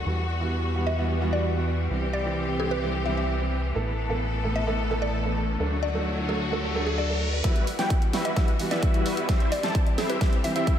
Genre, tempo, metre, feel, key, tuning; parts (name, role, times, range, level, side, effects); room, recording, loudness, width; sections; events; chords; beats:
EDM, festival progressive house; 130 BPM; 4/4; straight; E minor; A4 = 440 Hz
mallet-like synth pluck; melody; 0.0-10.6 s; A4 to E5; -33 LUFS; left 1 dB; chorus, phaser, ping-pong delay
clear symphonic string section; sustained chords; 0.0-10.8 s; D3 to A4; -32 LUFS; left 2 dB; sidechain pumping
fat analog bass; bass; 0.0-7.4 s; A1 to E2; -28 LUFS; equal; sidechain pumping
clear baby grand piano; accompaniment; 0.1-10.8 s; A2 to A4; -31 LUFS; right 3 dB; sidechain pumping, ping-pong delay
riser; sound effects; 5.4-7.4 s; -34 LUFS; equal
wide unison lead; arpeggios; 7.4-10.8 s; E5 to A5; -33 LUFS; left 1 dB; sidechain pumping, ping-pong delay
supersaw chords; riff; 7.4-10.8 s; G3 to A5; -30 LUFS; equal; ensemble chorus, sidechain pumping, low-pass filter, ping-pong delay
electronic kick drum; drums; 7.4-10.8 s; -23 LUFS; equal; overdrive
pop drum kit; drums; 7.4-10.8 s; hi-hat, snare drum; -33 LUFS; right 1 dB; high-pass filter on snare, high-pass filter on hats
moderate lush hall reverb, RT60 1.6 s, digital ambience; dreamy mix soaked in reverb; -23 LUFS; side -9 dB against mid
0.0-7.4 A section; 7.4-10.8 B section
riser 5.4-7.4; build-up 7.4-10.8; drum fill 7.4-10.8; filter sweep on analog synth lead 7.4-10.8
0.1 Emadd9; 1.9 C; 3.8 Asus2; 5.6 D; 7.4 Emadd9; 9.3 C
| 0.06 0.52 0.98 1.44 | 1.90 2.37 2.83 3.29 | 3.75 4.21 4.67 5.13 | 5.60 6.06 6.52 6.98 | 7.44 7.90 8.37 8.83 | 9.29 9.75 10.21 10.67